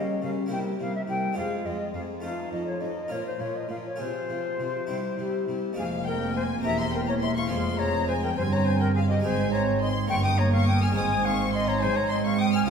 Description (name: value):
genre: classical, baroque-style concerto movement with solo episodes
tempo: 70 BPM (dotted quarters)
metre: 6/8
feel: straight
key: F minor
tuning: A4 = 437 Hz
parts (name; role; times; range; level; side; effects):
- silver concert flute; melody; 0.0-12.7 s; G4 to Ab5; -30 LUFS; left 2 dB; none
- warm chamber violin section; melody; 0.0-12.7 s; G4 to F6; -36 LUFS; left 3 dB; none
- warm chamber violin section; second line; 0.0-12.7 s; Db4 to F6; -35 LUFS; left 4 dB; none
- dark studio viola section; accompaniment; 0.0-12.7 s; F3 to C4; -32 LUFS; equal; none
- harpsichord; accompaniment; 0.0-12.7 s; E2 to Db5; -36 LUFS; left 1 dB; none
- dark chamber cello section; bass; 0.2-12.7 s; E2 to Ab3; -30 LUFS; right 4 dB; none
- rich chamber double bass section; bass; 5.8-12.7 s; E1 to Ab2; -29 LUFS; right 2 dB; none
room: wet scoring stage reverb, RT60 1.9 s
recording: heard from further back in the room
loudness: -24 LUFS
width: side -6 dB against mid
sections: 0.0-5.8 A section; 5.8-12.7 B section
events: none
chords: 0.0 Gdim/Db; 0.5 C7; 1.4 Fm; 2.2 F7; 3.1 Bb5; 4.0 Fm/C; 4.9 C; 5.8 Fm; 6.6 C7/E; 7.5 Fm; 9.2 Ab; 10.1 Eb/G; 11.0 Ab